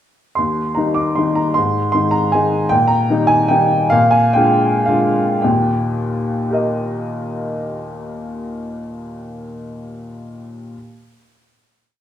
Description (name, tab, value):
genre	classical, piano waltz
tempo	100-166 BPM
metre	3/4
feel	rubato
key	Eb major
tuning	A4 = 440 Hz
part	warm upright piano	solo	0.4-10.8 s	Eb2 to D6	-16 LUFS	equal	none
room	wet recital hall reverb, RT60 1.3 s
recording	minimal, uncompressed stereo recording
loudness	-14 LUFS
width	side -10 dB against mid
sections	0.4-5.4 A section; 5.4-8.6 final chord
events	slowing down 2.1-5.4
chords	0.4 Eb; 1.6 Ab; 2.7 Eb/Bb; 3.9 Bb7; 5.4 Eb